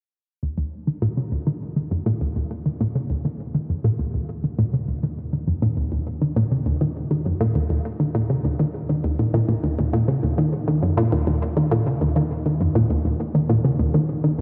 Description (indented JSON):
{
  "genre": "ambient, sequencer-driven space music",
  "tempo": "101 BPM",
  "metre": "4/4",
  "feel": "straight",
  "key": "unclear",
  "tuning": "A4 = 440 Hz",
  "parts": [
    { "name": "resonant blip pluck", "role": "riff", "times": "0.4-14.4 s", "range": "Eb2 to Eb3", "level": "-23 LUFS", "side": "equal", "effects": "chorus, tape echo" },
    { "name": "analog drone", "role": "bass", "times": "1.7-14.4 s", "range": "Eb2", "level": "-36 LUFS", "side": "equal", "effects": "none" }
  ],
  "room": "wet cathedral reverb, RT60 5.3 s",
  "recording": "in a vast, echoing space",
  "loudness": "-23 LUFS",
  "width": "mono",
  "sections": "0.4-14.4 A section",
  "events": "filter sweep on synth arpeggio sound 0.4-14.4",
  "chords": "none",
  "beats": "| 0.43 1.02 1.62 2.21 | 2.80 3.40 3.99 4.59 | 5.18 5.77 6.37 6.96 | 7.56 8.15 8.74 9.34 | 9.93 10.53 11.12 11.71 | 12.31 12.90 13.50 14.09"
}